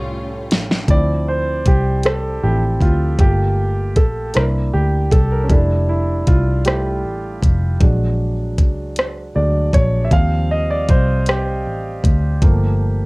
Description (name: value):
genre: slow six-eight R&B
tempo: 52 BPM (dotted quarters)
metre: 6/8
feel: straight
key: D minor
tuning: A4 = 440 Hz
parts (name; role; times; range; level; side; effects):
- warm flugelhorn; melody; 0.0-0.5 s; C#5; -35 LUFS; equal; analog delay
- warm concert grand piano; accompaniment; 0.0-13.1 s; A2 to F5; -21 LUFS; right 1 dB; cassette tape
- warm studio string section; sustained chords; 0.0-0.9 s; G3 to E#4; -33 LUFS; left 1 dB; cassette tape
- vintage muted fingered electric bass; bass; 0.0-13.1 s; F1 to Eb2; -18 LUFS; equal; none
- smooth R&B drum kit; drums; 0.5-12.6 s; hi-hat, kick drum, rim click, snare drum; -15 LUFS; equal; none
room: little or no reverb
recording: home recording on cassette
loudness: -14 LUFS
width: side -27 dB against mid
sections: 0.9-13.1 A section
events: drum fill 0.0-0.9; grand piano solo 0.9-13.1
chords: 0.0 A7alt; 0.9 Dm7; 3.2 Gm9; 4.3 C7; 5.5 Fmaj9; 7.8 Bb7alt; 10.1 Eb69; 12.4 Gm9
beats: | 0.88 2.04 | 3.19 4.34 | 5.50 6.65 | 7.80 8.96 | 10.11 11.27 | 12.42